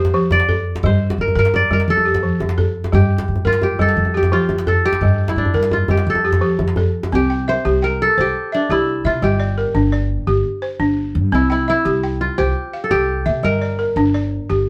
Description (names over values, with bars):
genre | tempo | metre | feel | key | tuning
west african traditional, West African string and xylophone music | 114 BPM (dotted quarters) | 12/8 | straight | G dorian | A4 = 439 Hz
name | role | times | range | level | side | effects
kora | melody | 0.0-14.7 s | D4 to D5 | -22 LUFS | equal | none
balafon | arpeggios | 0.0-14.7 s | F3 to G5 | -22 LUFS | equal | none
upright bass | bass | 0.0-14.6 s | G1 to G3 | -23 LUFS | equal | none
djembe | percussion | 0.0-7.1 s | none | -23 LUFS | equal | none
room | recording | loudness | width
moderate studio reverb, RT60 0.9 s | band playing live in one room | -17 LUFS | mono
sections
0.0-7.1 A section; 7.1-14.7 B section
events
none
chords
0.0 F; 0.8 Gm; 1.9 F; 2.9 Gm; 4.0 F; 5.0 Gm; 6.1 F; 7.1 C; 9.2 Gm; 11.3 C; 13.4 Gm